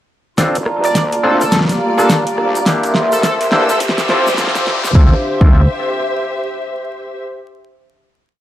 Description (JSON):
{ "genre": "glitch hop", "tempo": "105 BPM", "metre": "4/4", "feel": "swing 61% on 16ths", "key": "D minor", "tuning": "A4 = 441 Hz", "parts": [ { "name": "dark analog pad", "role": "sustained chords", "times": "0.4-5.2 s", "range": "D4 to D6", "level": "-19 LUFS", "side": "right 1 dB", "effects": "chorus, sidechain pumping" }, { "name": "overdriven clav", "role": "stabs", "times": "0.4-5.6 s", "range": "Bb3 to A4", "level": "-19 LUFS", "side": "left 1 dB", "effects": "sidechain pumping, low-pass filter, tape echo" }, { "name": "wobble bass", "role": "bass", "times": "0.4-5.7 s", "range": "F1 to E2", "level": "-18 LUFS", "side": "equal", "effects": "chorus, high-pass filter" }, { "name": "electronic kick drum", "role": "drums", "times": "0.4-5.5 s", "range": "none", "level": "-12 LUFS", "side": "equal", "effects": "high-pass filter on kick, studio ambience" }, { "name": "pop drum kit", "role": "drums", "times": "0.4-4.9 s", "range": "hi-hat, rim click, snare drum", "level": "-17 LUFS", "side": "equal", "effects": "studio ambience" }, { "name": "egg shaker", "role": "percussion", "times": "0.4-4.9 s", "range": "none", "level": "-31 LUFS", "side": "left 1 dB", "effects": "none" }, { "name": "riser", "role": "sound effects", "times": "2.3-5.0 s", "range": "none", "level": "-25 LUFS", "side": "equal", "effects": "none" }, { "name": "rich studio string section", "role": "texture", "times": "0.4-7.2 s", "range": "Bb3 to E6", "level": "-21 LUFS", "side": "left 1 dB", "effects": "sidechain pumping" }, { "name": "sync lead", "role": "melody", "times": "0.8-3.8 s", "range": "A4 to D5", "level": "-20 LUFS", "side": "equal", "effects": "analog chorus, tape echo" } ], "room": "light reverb", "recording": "dry, gritty hardware recording, transformer saturation, vinyl crackle, high-pass filter", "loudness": "-12 LUFS", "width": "side -13 dB against mid", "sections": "0.4-5.0 build; 5.0-7.2 final chord", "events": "build-up 0.4-5.0; drum fill 0.4-5.0; filter sweep 0.4-5.0; riser 2.3-5.0", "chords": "0.4 Bbmaj7; 1.5 Gm7; 2.7 C7; 3.8 Dm7" }